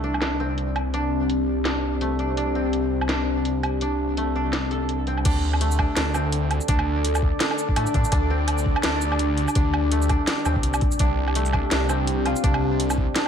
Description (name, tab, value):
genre	half-time drum and bass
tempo	167 BPM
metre	4/4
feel	swing 58% on 16ths, half-time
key	unclear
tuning	A4 = 440 Hz
part	deep dark ambient pad	sustained chords	0.0-13.3 s	C4 to D5	-27 LUFS	left 2 dB	chorus, built-in reverb, sidechain pumping
part	koto	arpeggios	0.0-13.3 s	A3 to D5	-28 LUFS	right 1 dB	vintage 12-bit sampler grit, diffuse ambient delay
part	phased detuned saw bass	bass	0.0-13.1 s	C2 to A2	-25 LUFS	equal	phaser
part	drum and bass drum kit	drums	0.1-13.3 s	crash cymbal, hi-hat, shaker, snare drum, woodblock	-27 LUFS	right 1 dB	low-pass filter on hats, low-pass filter on perc, low-pass filter on snare, low-pass filter on cymbals, low-pass filter on room
part	electronic kick drum	drums	5.3-13.1 s	none	-23 LUFS	equal	none
room	moderate plate reverb, RT60 1.6 s, digital ambience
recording	dreamy mix soaked in reverb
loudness	-20 LUFS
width	side -8 dB against mid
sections	0.0-5.2 A section; 5.2-13.3 B section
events	filter sweep on ambient pad 0.0-5.2; drop 5.2-13.3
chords	0.0 C5; 5.2 D5; 11.0 C5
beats	0.22 0.58 | 0.94 1.30 1.66 2.02 | 2.38 2.73 3.09 3.45 | 3.81 4.17 4.53 4.89 | 5.25 5.61 5.97 6.33 | 6.69 7.05 7.41 7.76 | 8.12 8.48 8.84 9.20 | 9.56 9.92 10.28 10.64 | 11.00 11.36 11.72 12.08 | 12.44 12.79 13.15